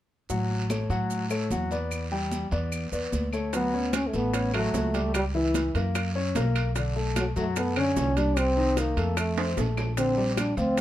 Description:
Afro-Cuban jazz; 149 BPM; 4/4; straight; D major; A4 = 437 Hz
warm grand piano; accompaniment; 0.3-10.8 s; D3 to G5; -30 LUFS; left 3 dB
upright bass; bass; 0.3-10.8 s; A1 to A2; -29 LUFS; right 1 dB
congas; percussion; 0.3-10.8 s; -36 LUFS; equal
guiro; percussion; 0.3-10.8 s; -41 LUFS; right 4 dB
maracas; percussion; 0.3-10.8 s; -42 LUFS; right 8 dB
claves; percussion; 0.7-10.6 s; -39 LUFS; left 4 dB
mellow trombone; melody; 3.5-10.8 s; E3 to D4; -27 LUFS; equal
bongos; percussion; 3.5-10.8 s; -36 LUFS; left 8 dB
timbales; percussion; 3.5-10.8 s; -35 LUFS; right 7 dB
light reverb; dark, warm production; -24 LUFS; side -13 dB against mid
0.3-3.5 A section; 3.5-10.8 B section
drum fill 9.4-10.0
0.3 Dmaj7/A; 1.9 Em7; 3.5 Dmaj7; 5.1 C#dim; 6.0 F#; 6.8 Bm9; 8.4 Cm7; 9.2 F; 10.0 Bb69

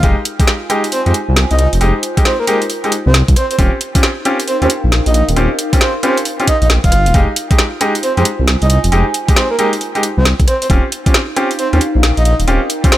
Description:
UK garage, two-step garage; 135 BPM; 4/4; swing 64% on 16ths; F minor; A4 = 441 Hz
breathy flute-like synth lead; melody; 0.0-13.0 s; Bb4 to F5; -20 LUFS; right 1 dB; chorus, digital delay
bright concert grand piano; stabs; 0.0-12.9 s; Ab3 to G4; -18 LUFS; equal; digital delay
dark detuned saw bass; bass; 0.0-12.6 s; Eb1 to F2; -12 LUFS; equal; sidechain pumping
electronic kick drum; drums; 0.0-12.9 s; -12 LUFS; equal; overdrive
garage drum kit; drums; 0.0-13.0 s; hi-hat, rim click, snare drum; -18 LUFS; equal; overdrive
warbly tape-like pad; texture; 0.0-13.0 s; Eb4 to Ab5; -24 LUFS; equal; chorus, built-in reverb, sidechain pumping
little or no reverb; -11 LUFS; side -14 dB against mid
0.0-13.0 A section
0.0 Fm9; 3.6 Eb13; 7.1 Fm9; 10.7 Eb13

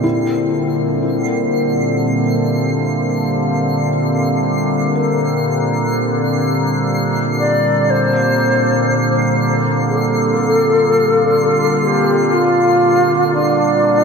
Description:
ambient; free time; A4 = 444 Hz
warm analog pad; sustained chords; 0.0-14.0 s; Bb2 to E5; -18 LUFS; equal; chorus
felt-muted upright piano; arpeggios; 0.0-14.0 s; C4 to Bb4; -24 LUFS; left 4 dB; ping-pong delay
overtone-sweeping drone; drone; 0.0-14.0 s; D3 to Bb3; -19 LUFS; right 1 dB; chorus, built-in reverb
twinkling granular texture; texture; 0.0-14.0 s; C7; -27 LUFS; right 2 dB; built-in reverb
alto flute; melody; 7.4-14.0 s; D4 to D5; -15 LUFS; left 1 dB; ping-pong delay
wet cathedral reverb, RT60 4.6 s; in a vast, echoing space; -13 LUFS; side -5 dB against mid
0.0-14.0 A section
fade-in on synth texture 0.0-14.0; fade-out on felt piano 0.0-14.0
0.0 C9; 7.9 Bbmaj9

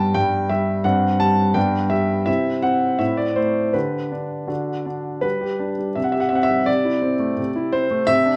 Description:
classical-period piano sonatina; 83 BPM; 2/4; uneven beats, rubato; G major; A4 = 439 Hz
clear grand piano; solo; 0.0-8.4 s; G2 to A5; -20 LUFS; equal
wet recital hall reverb, RT60 1.3 s; dark, warm production, nothing above 10.7 kHz; -21 LUFS; mono
0.0-5.2 A section; 5.2-8.4 B section
0.0 G; 0.9 D7/G; 1.6 G; 2.3 C; 3.0 Am; 3.8 G/D; 4.5 D; 5.2 G; 6.0 C5; 6.7 Am/C

